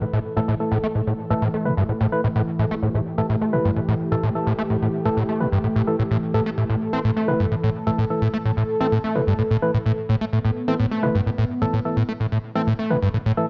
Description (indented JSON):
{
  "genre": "house",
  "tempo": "128 BPM",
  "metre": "4/4",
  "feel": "straight",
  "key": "unclear",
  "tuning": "A4 = 440 Hz",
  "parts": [
    { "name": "warm analog pad", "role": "sustained chords", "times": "0.0-13.5 s", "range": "E3 to A4", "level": "-30 LUFS", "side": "equal", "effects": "chorus" },
    { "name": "overdriven acid bass", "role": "riff", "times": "0.0-13.3 s", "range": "G2 to C4", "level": "-24 LUFS", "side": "equal", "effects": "distortion, tube saturation, analog chorus, tape echo" },
    { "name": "percussive organ stab", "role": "stabs", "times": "0.4-13.5 s", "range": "E3 to B4", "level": "-28 LUFS", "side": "equal", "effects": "chorus, tape echo" }
  ],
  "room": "moderate plate reverb, RT60 1.4 s",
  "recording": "nothing above 7.9 kHz",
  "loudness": "-22 LUFS",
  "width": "mono",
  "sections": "0.0-13.5 A section",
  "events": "filter sweep on acid bass 0.0-13.5",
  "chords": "0.0 A5",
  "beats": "0.01 0.48 | 0.95 1.42 1.89 2.36 | 2.83 3.29 3.76 4.23 | 4.70 5.17 5.64 6.11 | 6.58 7.04 7.51 7.98 | 8.45 8.92 9.39 9.86 | 10.33 10.79 11.26 11.73 | 12.20 12.67 13.14"
}